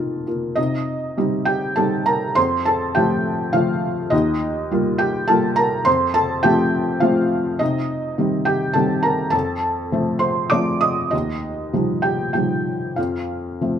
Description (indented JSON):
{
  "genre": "neoclassical minimalist piano",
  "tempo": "101 BPM",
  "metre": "3/4",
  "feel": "rubato",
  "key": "unclear",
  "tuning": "A4 = 440 Hz",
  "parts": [
    { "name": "felt-muted upright piano", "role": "solo", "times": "0.0-13.8 s", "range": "Eb2 to Eb6", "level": "-18 LUFS", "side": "equal", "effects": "none" }
  ],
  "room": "light reverb",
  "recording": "minimal, uncompressed stereo recording",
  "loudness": "-18 LUFS",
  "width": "side -9 dB against mid",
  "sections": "0.6-13.8 A section",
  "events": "none",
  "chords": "0.0 F7sus4; 0.6 Cm; 2.4 F; 4.1 Ebadd9; 5.9 F; 7.6 Cm; 9.3 F; 11.1 Ebadd9; 13.0 F"
}